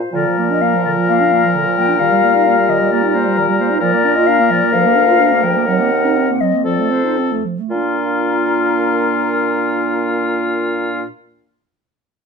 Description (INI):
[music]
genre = quick classical-period movement for wind quintet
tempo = 108-135 BPM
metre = 4/4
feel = rubato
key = Bb major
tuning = A4 = 440 Hz
[part]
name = concert flute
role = melody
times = 0.0-11.1 s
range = A4 to G5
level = -18 LUFS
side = left 9 dB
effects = none
[part]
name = mellow French horn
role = accompaniment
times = 0.0-11.1 s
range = F3 to F4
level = -22 LUFS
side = left 2 dB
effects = none
[part]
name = clear oboe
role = second line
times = 0.1-11.0 s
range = F4 to Bb4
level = -19 LUFS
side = left 4 dB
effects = none
[part]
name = dark clarinet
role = accompaniment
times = 0.1-11.1 s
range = D3 to F4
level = -20 LUFS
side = right 10 dB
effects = none
[part]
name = mellow bassoon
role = bass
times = 0.1-11.1 s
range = D2 to Bb2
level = -20 LUFS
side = right 3 dB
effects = none
[sound]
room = moderate studio reverb, RT60 0.8 s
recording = minimal, uncompressed stereo recording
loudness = -13 LUFS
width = side -5 dB against mid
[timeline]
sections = 0.1-7.7 A section; 7.7-12.0 B section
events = slowing down 2.9-7.7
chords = 0.1 Bb; 2.0 Eb/Bb; 3.8 Bb; 4.7 Bb/D; 5.7 Cm7b5/Eb; 6.7 F7; 7.7 Bb